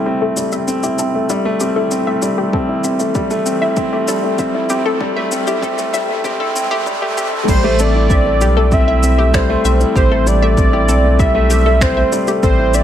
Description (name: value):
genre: piano and strings electronica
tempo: 97 BPM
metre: 4/4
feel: straight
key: A minor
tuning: A4 = 439 Hz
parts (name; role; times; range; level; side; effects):
- warm grand piano; riff; 0.0-12.8 s; G3 to E4; -16 LUFS; left 1 dB; tape echo
- riser; sound effects; 0.1-7.5 s; none; -29 LUFS; right 2 dB; none
- analog pluck; arpeggios; 0.1-12.8 s; G4 to E5; -24 LUFS; left 4 dB; chorus, sidechain pumping, tape echo
- deep house drum kit; drums; 0.4-12.8 s; crash cymbal, finger snaps, shaker; -25 LUFS; equal; studio ambience
- electronic kick drum; drums; 2.5-12.6 s; none; -17 LUFS; equal; studio ambience
- warm velvety synth lead; melody; 7.5-12.8 s; C5 to E5; -17 LUFS; right 1 dB; chorus
- warm sub bass; bass; 7.5-12.8 s; A1 to B1; -15 LUFS; equal; sidechain pumping
room: light reverb, digital ambience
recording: high-pass filter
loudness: -13 LUFS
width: side -10 dB against mid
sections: 0.0-7.5 A section; 7.5-12.8 B section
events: build-up 0.0-7.5; filter sweep on synth arpeggio sound 0.0-7.5; filter sweep 0.0-7.5; riser 0.1-7.5; drop 7.5-12.8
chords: 0.0 Am7